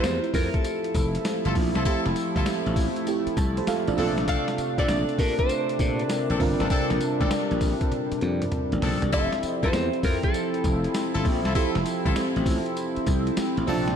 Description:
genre	R&B, new jack swing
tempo	99 BPM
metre	4/4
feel	swing 66% on 16ths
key	F major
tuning	A4 = 440 Hz
part	direct-recorded clean electric guitar	melody	0.0-11.2 s	A4 to F5	-31 LUFS	left 1 dB	analog chorus, ping-pong delay
part	FM electric piano	accompaniment	0.0-14.0 s	A3 to A5	-30 LUFS	right 6 dB	chorus
part	chorused pulse-width pad	sustained chords	0.0-14.0 s	C3 to E4	-29 LUFS	left 1 dB	none
part	clear horn section	stabs	0.0-13.9 s	C4 to A4	-34 LUFS	left 2 dB	ping-pong delay
part	glassy slap bass	bass	0.0-14.0 s	F1 to Bb2	-27 LUFS	equal	none
part	boom bap sampler-style drum kit	drums	0.0-14.0 s	hi-hat, kick drum, snare drum, tambourine, toms	-28 LUFS	equal	vintage 12-bit sampler grit
room	light reverb, digital ambience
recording	none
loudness	-22 LUFS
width	side -8 dB against mid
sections	0.0-14.0 A section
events	FM electric piano fill 3.1-4.3; drum fill 7.9-9.1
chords	0.0 Fmaj7; 4.0 Bbmaj9; 9.1 Fmaj7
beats	0.04 0.64 1.25 | 1.85 2.46 3.07 3.67 | 4.28 4.88 5.49 6.10 | 6.70 7.31 7.92 8.52 | 9.13 9.73 10.34 10.95 | 11.55 12.16 12.76 13.37

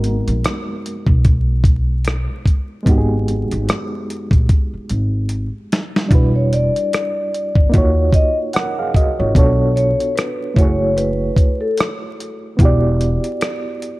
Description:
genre	lo-fi hip hop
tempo	74 BPM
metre	4/4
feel	swing 58% on 16ths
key	G# minor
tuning	A4 = 442 Hz
part	reed electric piano	accompaniment	0.0-14.0 s	G3 to F#5	-22 LUFS	right 1 dB	fast tremolo, cassette tape, low-pass filter
part	upright bass	bass	0.0-13.2 s	E1 to D#2	-18 LUFS	equal	none
part	dusty soul sampler-style drum kit	drums	0.0-14.0 s	hi-hat, kick drum, rim click, snare drum	-16 LUFS	equal	none
part	vibraphone with soft mallets	melody	6.4-11.8 s	A4 to D#5	-21 LUFS	left 1 dB	auto-pan, low-pass filter, analog delay
room	light reverb, small room ambience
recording	vinyl crackle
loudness	-14 LUFS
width	side -19 dB against mid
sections	0.0-6.1 A section; 6.1-14.0 B section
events	drum fill 4.5-6.1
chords	0.0 G#m7; 6.1 Em7; 7.7 D#m7; 9.3 Bm7; 10.6 F#m7; 12.6 Em7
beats	0.43 1.24 2.05 | 2.86 3.67 4.48 5.29 | 6.11 6.92 7.73 8.54 | 9.35 10.16 10.97 11.78 | 12.59 13.40

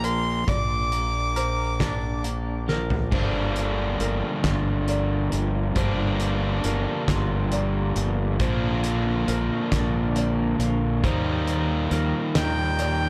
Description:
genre	post-rock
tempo	46 BPM (dotted quarters)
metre	6/8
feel	straight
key	G minor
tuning	A4 = 438 Hz
part	bright violin	melody	0.0-2.2, 12.4-13.1 s	G5 to D6	-30 LUFS	equal	analog delay
part	clean electric guitar	arpeggios	0.0-13.1 s	G2 to Bb4	-37 LUFS	equal	tremolo, analog delay
part	felt-muted upright piano	arpeggios	0.0-13.1 s	Bb4 to D5	-38 LUFS	equal	analog delay
part	fuzz fingered electric bass	bass	0.0-13.1 s	G1 to Eb2	-29 LUFS	equal	overdrive
part	loose indie drum kit	drums	0.0-13.0 s	crash cymbal, hi-hat, kick drum, snare drum, toms	-30 LUFS	equal	none
part	distorted electric guitar	riff	3.1-13.1 s	G2 to Eb4	-28 LUFS	equal	distortion
room	studio ambience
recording	dark, warm production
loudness	-24 LUFS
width	mono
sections	0.0-3.1 A section; 3.1-13.1 B section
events	drum fill 2.7-3.1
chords	0.0 Bb; 3.1 Gm7; 8.4 Bb; 11.0 Ebadd9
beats	| 0.48 1.80 | 3.12 4.45 | 5.77 7.09 | 8.40 9.72 | 11.04 12.36

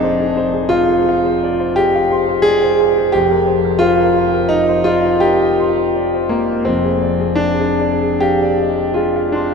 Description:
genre	classical, impressionist solo piano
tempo	68-90 BPM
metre	5/4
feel	rubato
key	unclear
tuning	A4 = 439 Hz
part	clear concert grand piano	solo	0.0-9.5 s	F1 to C6	-13 LUFS	equal	none
room	wet cathedral reverb, RT60 5.4 s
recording	none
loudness	-13 LUFS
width	side -5 dB against mid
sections	0.0-9.5 A section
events	none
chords	0.0 Fm7; 3.2 Cm7/F; 6.7 Fm6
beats	0.38 1.08 1.79 2.47 | 3.15 3.82 4.51 5.23 5.95 | 6.66 7.38 8.21 8.97

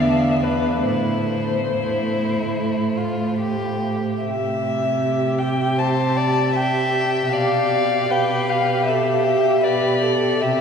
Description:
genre	classical, slow romantic movement for string quartet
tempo	70-79 BPM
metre	4/4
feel	rubato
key	A minor, C major from 4.2 s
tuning	A4 = 440 Hz
part	dark violin	melody	0.0-10.6 s	B4 to A5	-22 LUFS	left 4 dB	none
part	rich violin	second line	0.0-10.6 s	D4 to E5	-26 LUFS	equal	none
part	dark viola	accompaniment	0.0-10.6 s	A3 to G4	-23 LUFS	right 3 dB	none
part	warm cello	bass	0.0-10.6 s	E2 to C3	-25 LUFS	right 3 dB	none
room	wet cathedral reverb, RT60 5.9 s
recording	minimal, uncompressed stereo recording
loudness	-18 LUFS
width	side -6 dB against mid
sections	0.0-4.2 A section; 4.2-10.6 B section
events	none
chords	0.0 E5; 0.9 Am; 4.2 C; 7.3 G7/B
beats	0.02 | 0.85 1.71 2.55 3.41 | 4.24 5.00 5.78 6.57 | 7.34 8.11 8.87 9.64 | 10.41

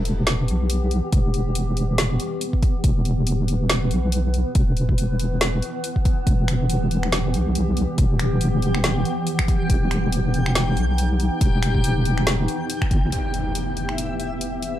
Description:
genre	deep dubstep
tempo	140 BPM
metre	4/4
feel	swing 57% on 16ths, half-time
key	E harmonic minor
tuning	A4 = 445 Hz
part	granular cloud pad	sustained chords	0.0-14.8 s	E3 to B4	-27 LUFS	equal	built-in reverb
part	deep soft wobble bass	bass	0.0-13.1 s	E1 to B1	-21 LUFS	equal	chorus
part	deep house drum kit	drums	0.1-14.7 s	finger snaps, hi-hat, snare drum	-26 LUFS	equal	studio reverb
part	electronic kick drum	drums	1.1-13.0 s	none	-20 LUFS	equal	studio reverb
part	backwards swelling texture	texture	7.3-14.8 s	E4 to G5	-31 LUFS	left 2 dB	built-in reverb
part	impact	sound effects	13.1-14.8 s	none	-30 LUFS	equal	none
room	little or no reverb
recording	dark, warm production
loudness	-19 LUFS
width	side -12 dB against mid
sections	0.0-13.1 A section; 13.1-14.8 B section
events	band accent 12.8; impact 13.1-14.8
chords	0.0 Em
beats	0.27 0.70 | 1.12 1.55 1.98 2.41 | 2.84 3.27 3.70 4.12 | 4.55 4.98 5.41 5.84 | 6.27 6.70 7.12 7.55 | 7.98 8.41 8.84 9.27 | 9.70 10.12 10.55 10.98 | 11.41 11.84 12.27 12.70 | 13.12 13.55 13.98 14.41

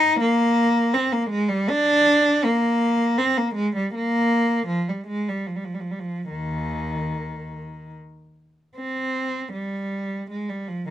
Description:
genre	classical, baroque-style suite movement for unaccompanied cello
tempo	71-83 BPM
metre	3/4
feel	rubato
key	Eb major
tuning	A4 = 440 Hz
part	rich cello	solo	0.0-10.9 s	Eb2 to Eb4	-20 LUFS	equal	none
room	light reverb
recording	close, detailed microphones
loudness	-20 LUFS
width	side -11 dB against mid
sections	0.0-8.8 A section; 8.8-10.9 A section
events	none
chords	none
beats	0.19 0.92 | 1.69 2.43 3.18 | 3.94 4.68 5.46 | 6.27 7.11 7.93 | 8.76 9.53 10.29

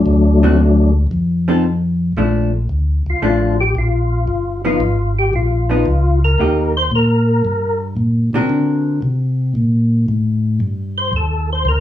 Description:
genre	soul jazz organ trio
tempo	114 BPM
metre	4/4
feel	swing 69% on 8ths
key	Bb major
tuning	A4 = 436 Hz
part	percussive tonewheel organ	melody	0.0-7.8, 11.0-11.8 s	F#3 to C5	-17 LUFS	left 2 dB	slow rotary speaker, chorus vibrato
part	mellow tonewheel organ	bass	0.1-11.8 s	G1 to D3	-16 LUFS	equal	slow rotary speaker
part	vintage hollow-body jazz guitar	accompaniment	0.4-9.0 s	D3 to Bb4	-17 LUFS	equal	none
room	light reverb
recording	studio reverb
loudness	-14 LUFS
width	side -12 dB against mid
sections	0.0-2.2 A section; 2.2-11.8 B section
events	tonewheel organ solo 2.2-11.8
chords	0.1 D7; 1.1 F7; 2.2 Bbmaj7; 4.3 G7alt; 6.4 Cm7 (rootless); 8.5 D7b13; 10.6 G5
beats	| 0.05 0.58 1.11 1.64 | 2.16 2.69 3.22 3.75 | 4.28 4.80 5.33 5.86 | 6.39 6.91 7.44 7.97 | 8.50 9.02 9.55 10.08 | 10.61 11.13 11.66

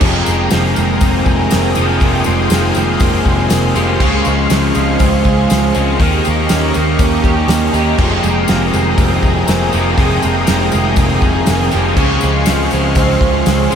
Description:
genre	rock, shoegaze and dream pop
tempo	120 BPM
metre	4/4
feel	straight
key	F minor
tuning	A4 = 440 Hz
part	analog string pad	sustained chords	0.0-13.8 s	G4 to Eb6	-20 LUFS	left 2 dB	ensemble chorus
part	picked twelve-string acoustic guitar	arpeggios	0.0-13.8 s	F3 to Ab4	-21 LUFS	right 5 dB	analog chorus, diffuse ambient delay
part	biting overdriven guitar	riff	0.0-13.8 s	F2 to Ab4	-20 LUFS	left 7 dB	wide subtle chorus
part	overdriven electric guitar	riff	0.0-13.8 s	F2 to Eb4	-19 LUFS	equal	wide subtle chorus
part	raw garage guitar	riff	0.0-13.8 s	F2 to Ab4	-21 LUFS	right 8 dB	overdrive, reverse reverb
part	vintage muted picked electric bass	bass	0.0-13.8 s	F1 to Eb2	-17 LUFS	equal	none
part	loose indie drum kit	drums	0.0-13.6 s	crash cymbal, hi-hat, kick drum, snare drum	-18 LUFS	equal	none
part	tambourine	percussion	0.0-13.8 s	none	-29 LUFS	left 12 dB	none
room	moderate huge ambient reverb, RT60 4.6 s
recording	dreamy mix soaked in reverb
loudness	-11 LUFS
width	side -8 dB against mid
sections	0.0-13.8 A section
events	none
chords	0.0 Fm11; 4.0 Dbmaj7; 6.0 Eb7; 8.0 Fm11; 12.0 Dbmaj7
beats	| 0.02 0.52 1.02 1.51 | 2.01 2.51 3.01 3.51 | 4.01 4.50 5.00 5.50 | 6.00 6.49 6.99 7.49 | 7.99 8.48 8.98 9.48 | 9.98 10.48 10.98 11.47 | 11.97 12.47 12.97 13.47

